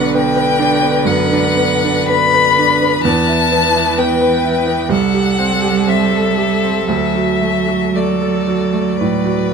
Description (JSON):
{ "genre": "classical, slow romantic movement for piano quartet", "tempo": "57-66 BPM", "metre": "4/4", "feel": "rubato", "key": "unclear", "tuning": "A4 = 440 Hz", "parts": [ { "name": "rich violin", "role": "melody", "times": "0.0-9.5 s", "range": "D5 to B5", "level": "-17 LUFS", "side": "left 6 dB", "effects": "none" }, { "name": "rich cello", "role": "second line", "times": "0.0-9.5 s", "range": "D3 to G3", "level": "-19 LUFS", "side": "right 7 dB", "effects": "none" }, { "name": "warm violin", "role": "second line", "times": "0.0-9.5 s", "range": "A4 to B4", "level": "-22 LUFS", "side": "left 4 dB", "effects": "none" }, { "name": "bright grand piano", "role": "accompaniment", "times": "0.0-9.5 s", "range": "B1 to B4", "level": "-17 LUFS", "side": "right 2 dB", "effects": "none" } ], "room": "moderate stone room reverb, RT60 1.0 s", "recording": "none", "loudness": "-12 LUFS", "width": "side -6 dB against mid", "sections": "0.0-9.5 A section", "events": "none", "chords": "0.0 Bm; 3.1 Em; 4.9 Am7/C; 6.9 D" }